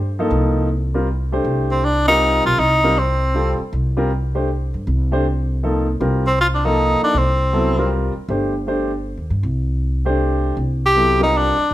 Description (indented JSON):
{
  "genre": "modal jazz",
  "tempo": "158 BPM",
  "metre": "3/4",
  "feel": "swing 65% on 8ths",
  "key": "C dorian",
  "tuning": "A4 = 442 Hz",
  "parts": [
    { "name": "upright bass", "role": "bass", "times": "0.0-11.7 s", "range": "G1 to G2", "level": "-20 LUFS", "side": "equal", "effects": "none" },
    { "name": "warm concert grand piano", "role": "accompaniment", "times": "0.2-11.5 s", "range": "F3 to C5", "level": "-21 LUFS", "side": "equal", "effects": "none" },
    { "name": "bright tenor saxophone", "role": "melody", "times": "1.7-3.6, 6.3-7.9, 10.9-11.7 s", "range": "C4 to G4", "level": "-16 LUFS", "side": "equal", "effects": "none" }
  ],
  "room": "light reverb",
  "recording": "none",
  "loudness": "-16 LUFS",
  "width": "side -14 dB against mid",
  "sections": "0.0-11.7 A section",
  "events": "none",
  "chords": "0.0 C9sus4"
}